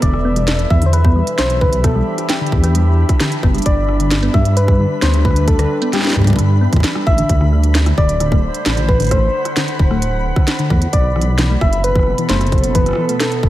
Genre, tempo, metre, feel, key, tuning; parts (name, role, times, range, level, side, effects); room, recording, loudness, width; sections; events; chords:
IDM; 132 BPM; 4/4; straight; E minor; A4 = 444 Hz
soft struck synth lead; melody; 0.0-13.5 s; G4 to E5; -21 LUFS; equal; chorus, digital delay
warbly tape-like pad; sustained chords; 0.0-13.5 s; B2 to F#5; -23 LUFS; right 1 dB; chorus, built-in reverb
thumb-piano-like synth pluck; arpeggios; 0.0-13.1 s; D3 to B3; -23 LUFS; left 2 dB; chorus, digital delay
dark detuned saw bass; bass; 0.0-13.5 s; D1 to G2; -15 LUFS; equal
electronic kick drum; drums; 0.0-13.5 s; -14 LUFS; equal
organic electronic drum kit; drums; 0.0-13.4 s; hi-hat, rim click, snare drum; -22 LUFS; equal
flickering grainy texture; texture; 0.0-13.5 s; B5; -31 LUFS; left 2 dB; built-in reverb
light reverb; -12 LUFS; side -14 dB against mid
0.0-13.5 A section
0.0 Em7; 3.7 G6; 7.3 D7; 10.9 B7sus4